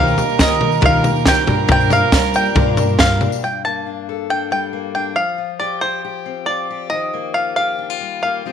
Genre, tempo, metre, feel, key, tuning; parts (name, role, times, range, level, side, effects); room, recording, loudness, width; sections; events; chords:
indie folk with a building arrangement; 138 BPM; 4/4; straight; G minor; A4 = 440 Hz
bluegrass banjo; melody; 0.0-8.5 s; C5 to A5; -19 LUFS; equal
dark fiddle; second line; 0.0-3.2 s; Bb4; -21 LUFS; right 13 dB
clear upright piano; accompaniment; 0.0-3.4 s; G1 to Bb4; -26 LUFS; right 13 dB
picked twelve-string acoustic guitar; accompaniment; 0.0-3.4 s; G2 to G4; -23 LUFS; left 13 dB; wide subtle chorus
upright bass; bass; 0.0-3.2 s; Eb2 to G3; -21 LUFS; equal
tambourine; percussion; 0.1-3.4 s; -34 LUFS; left 17 dB
compact cocktail drum kit; drums; 0.2-3.3 s; kick drum, snare drum, toms; -16 LUFS; equal
fingerpicked steel-string acoustic guitar; accompaniment; 3.4-8.5 s; G2 to A4; -25 LUFS; left 12 dB
moderate echo chamber reverb, RT60 1.4 s, studio reverb; 1960s-style stereo with parts hard left and right; -15 LUFS; side -8 dB against mid
0.0-3.4 A section; 3.4-8.5 B section
0.0 Ebadd9; 1.5 Gm7; 3.4 Gmadd9; 5.2 Fsus2; 6.9 Ebadd9